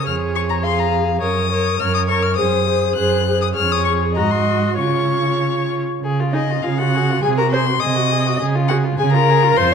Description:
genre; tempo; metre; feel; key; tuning
quick classical-period movement for string quartet; 102 BPM; 2/4; rubato; Db major; A4 = 439 Hz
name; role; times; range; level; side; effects
rich violin; melody; 0.0-9.7 s; Eb5 to Gb6; -21 LUFS; left 11 dB; none
dark violin; second line; 0.0-9.7 s; F4 to F5; -23 LUFS; left 4 dB; none
warm viola; accompaniment; 0.0-9.7 s; Eb4 to Eb5; -22 LUFS; right 2 dB; none
rich cello; bass; 0.0-9.7 s; F2 to Db3; -20 LUFS; right 4 dB; none
room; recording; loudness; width
moderate recital hall reverb, RT60 1.3 s; dark, warm production; -15 LUFS; side -6 dB against mid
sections
0.0-6.0 A section; 6.0-9.7 B section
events
none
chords
0.1 Db/F; 1.2 Ebm7/Gb; 2.4 Ab7/Gb; 3.6 Db/F; 4.2 Ab7; 4.8 Db; 7.2 Ab7/C; 8.4 Db

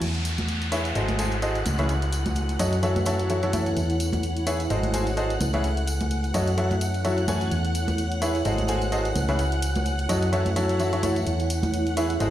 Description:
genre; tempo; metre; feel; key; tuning
piano house; 128 BPM; 4/4; swing 56% on 16ths; E major; A4 = 440 Hz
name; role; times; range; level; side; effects
string machine, violins; sustained chords; 0.0-12.3 s; F#5 to F#6; -34 LUFS; equal; ensemble chorus
solid FM bass; bass; 0.0-12.3 s; G#1 to F#2; -26 LUFS; equal; none
punchy analog drum machine; drums; 0.0-12.3 s; crash cymbal, hi-hat; -37 LUFS; equal; none
tambourine and congas; percussion; 0.0-12.3 s; none; -32 LUFS; right 1 dB; none
downlifter; sound effects; 0.0-3.8 s; none; -34 LUFS; equal; none
granular cloud pad; texture; 1.2-12.3 s; E4 to G#5; -32 LUFS; right 1 dB; built-in reverb
bright grand piano; riff; 0.7-12.3 s; C#3 to G#5; -27 LUFS; left 1 dB; vintage 12-bit sampler grit, ping-pong delay
room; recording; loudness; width
light reverb; played on a big sound system in a bare room, large studio reverb; -22 LUFS; side -12 dB against mid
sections
0.0-12.3 A section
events
none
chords
0.0 E6; 1.0 G#7b9; 1.7 C#m7; 2.6 F#m7; 3.8 E6; 4.7 G#7b9; 5.4 C#m7; 6.3 F#m7; 7.5 E6; 8.5 G#7b9; 9.2 C#m7; 10.1 F#m7; 11.3 E6

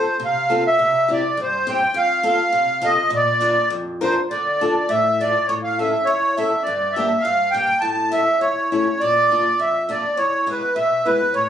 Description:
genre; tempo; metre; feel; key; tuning
alpine folk, alpine dance band; 102 BPM; 2/4; straight; Bb major, D harmonic minor from 4.3 s; A4 = 440 Hz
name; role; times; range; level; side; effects
accordion; melody; 0.0-11.5 s; B4 to A5; -17 LUFS; right 1 dB; light tremolo tuning
picked steel-string acoustic guitar; accompaniment; 0.0-11.5 s; E2 to Bb4; -25 LUFS; left 3 dB; none
room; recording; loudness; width
moderate studio ambience, RT60 0.5 s; recorded on a phone in the room, club reverb, compression; -17 LUFS; side -9 dB against mid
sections
0.0-4.3 A section; 4.3-11.5 B section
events
none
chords
0.0 F; 0.8 C; 2.0 F; 3.1 Bb; 4.3 Dm; 5.5 A; 6.7 Gm; 7.8 A; 9.0 Bb; 10.2 E

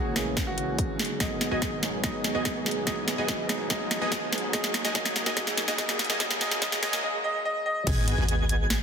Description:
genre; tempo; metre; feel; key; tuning
future bass; 144 BPM; 4/4; half-time; G# minor; A4 = 440 Hz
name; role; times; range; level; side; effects
bright grand piano; melody; 0.0-7.9 s; F#4 to D#5; -33 LUFS; equal; sidechain pumping, digital delay
tine electric piano; accompaniment; 0.0-7.9 s; E3 to G#4; -35 LUFS; right 2 dB; sidechain pumping, digital delay
ethereal airy pad; sustained chords; 0.1-7.0 s; B2 to G#4; -43 LUFS; equal; none
supersaw stab; riff; 0.0-8.8 s; A#3 to G#5; -33 LUFS; right 1 dB; sidechain pumping, low-pass filter, digital delay
warm 808-style bass; bass; 0.0-8.8 s; D#1 to A#1; -33 LUFS; equal; sidechain pumping
riser and sub drop; sound effects; 0.5-8.8 s; none; -36 LUFS; equal; none
trap drum kit; drums; 0.2-8.8 s; crash cymbal, hi-hat, snare drum; -28 LUFS; equal; none
electronic kick drum; drums; 0.4-8.0 s; none; -33 LUFS; equal; none
airy dreamy lead; arpeggios; 7.9-8.8 s; G#6; -33 LUFS; left 1 dB; chorus, sidechain pumping, digital delay
room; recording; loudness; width
moderate digital room reverb, RT60 1.1 s; dense, heavily limited modern master, high-pass filter; -25 LUFS; side -7 dB against mid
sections
0.0-7.9 A section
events
build-up 0.0-7.9; drum fill 0.0-7.0; filter sweep on supersaw synth 0.0-7.9; filter sweep 0.0-7.9; riser 0.5-7.0; impact 7.9-8.8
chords
0.0 A#m7b5; 1.0 G#m7; 4.5 D#m7; 7.9 G#m7

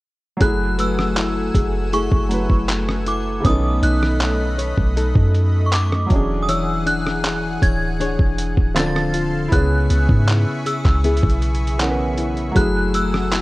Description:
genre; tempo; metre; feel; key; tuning
contemporary R&B; 79 BPM; 4/4; straight; F# minor; A4 = 440 Hz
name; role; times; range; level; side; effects
synth chime; melody; 0.4-13.4 s; C#6 to A6; -26 LUFS; equal; ensemble chorus, tape echo
felt-muted upright piano; accompaniment; 0.4-13.4 s; C#3 to B4; -26 LUFS; right 2 dB; none
lush unison pad; sustained chords; 0.4-13.4 s; A3 to E6; -31 LUFS; equal; chorus, sidechain pumping
nylon-string guitar; arpeggios; 0.4-13.4 s; C#3 to C#5; -24 LUFS; left 3 dB; none
soft 808-style bass; bass; 0.4-13.4 s; D1 to G#2; -20 LUFS; equal; none
dusty soul sampler-style drum kit; drums; 0.4-13.4 s; handclaps, hi-hat, kick drum, rim click; -19 LUFS; equal; overdrive
large celesta; texture; 0.8-12.9 s; F4 to F#5; -33 LUFS; right 2 dB; tape echo
room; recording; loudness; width
little or no reverb; worn, warbling old tape, cassette tape, warbly pitch drift; -16 LUFS; side -19 dB against mid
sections
0.4-13.4 A section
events
none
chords
0.4 F#m9; 3.4 B9; 6.1 E13; 8.8 Dm7; 9.5 C#m7; 12.6 F#m9

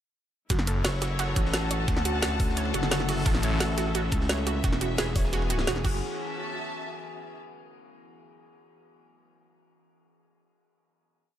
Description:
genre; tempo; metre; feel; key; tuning
dark technical drum and bass; 174 BPM; 4/4; straight; F# minor; A4 = 439 Hz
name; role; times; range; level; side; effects
metallic inharmonic drone; sustained chords; 1.0-6.0 s; D3 to A4; -34 LUFS; left 1 dB; chorus, built-in reverb, sidechain pumping
analog pluck; arpeggios; 0.5-6.0 s; F#4 to C#5; -35 LUFS; right 8 dB; chorus, sidechain pumping, digital delay
phased detuned saw bass; bass; 0.5-0.8, 3.3-6.0 s; E1 to A1; -28 LUFS; equal; phaser, tube saturation, sidechain pumping
crunchy breakbeat drum kit; drums; 0.5-5.8 s; hi-hat, ride cymbal, snare drum; -41 LUFS; left 1 dB; none
drum and bass drum kit; drums; 0.5-5.9 s; crash cymbal, hi-hat, snare drum; -30 LUFS; equal; none
electronic kick drum; drums; 0.5-5.9 s; none; -27 LUFS; equal; overdrive
clear studio string section; texture; 0.5-7.4 s; B3 to A5; -35 LUFS; left 2 dB; sidechain pumping
growling FM bass; bass; 0.8-5.8 s; E1 to D2; -30 LUFS; equal; none
room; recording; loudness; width
light reverb, small room ambience; none; -25 LUFS; side -11 dB against mid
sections
0.5-6.0 drop; 6.0-7.4 final chord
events
drop 0.5-6.0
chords
0.5 F#m7; 1.9 D; 3.3 A; 4.6 E; 5.8 F#m; 6.0 F#m7

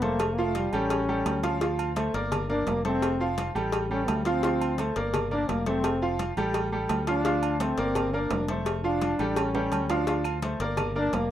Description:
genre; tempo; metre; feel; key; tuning
latin, salsa; 170 BPM; 4/4; straight; D minor; A4 = 441 Hz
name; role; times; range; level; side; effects
breathy trombone; melody; 0.0-11.3 s; G3 to D4; -30 LUFS; left 1 dB; plate reverb
bright baby grand piano; accompaniment; 0.0-11.2 s; F3 to F5; -29 LUFS; right 2 dB; plate reverb
fingered electric bass; bass; 0.0-11.3 s; F1 to D2; -32 LUFS; left 1 dB; none
congas; percussion; 0.0-11.3 s; none; -37 LUFS; left 3 dB; none
cowbell; percussion; 0.0-11.3 s; none; -34 LUFS; left 5 dB; none
agogo bells and timbales; percussion; 0.2-11.3 s; none; -35 LUFS; right 8 dB; none
claves; percussion; 10.2-11.0 s; none; -41 LUFS; left 6 dB; none
room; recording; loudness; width
moderate small room reverb, RT60 0.5 s; rough home demo mix; -24 LUFS; side -11 dB against mid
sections
0.0-11.3 A section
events
trombone solo 0.0-11.3; drum fill 9.5-10.1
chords
0.2 F; 0.9 A7; 1.6 Dm7; 2.3 Gm7; 3.0 F; 3.7 A7alt; 4.4 Dm7; 5.1 Gm7; 5.8 F; 6.5 Dmadd11/A; 7.3 Dm7; 8.0 Gm7; 8.7 F; 9.4 A7; 10.1 Dm7; 10.8 Gm7

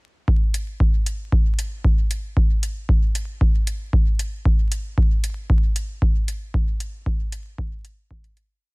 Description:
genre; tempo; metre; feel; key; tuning
techno; 115 BPM; 4/4; straight; none; none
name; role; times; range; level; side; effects
electronic kick drum; drums; 0.3-8.2 s; none; -19 LUFS; equal; none
electronic hi-hat; drums; 0.5-8.5 s; none; -33 LUFS; equal; none
room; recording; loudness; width
little or no reverb; dense, heavily limited modern master, vinyl crackle; -19 LUFS; side -32 dB against mid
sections
0.3-8.6 groove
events
fade-out 5.8-8.6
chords
none

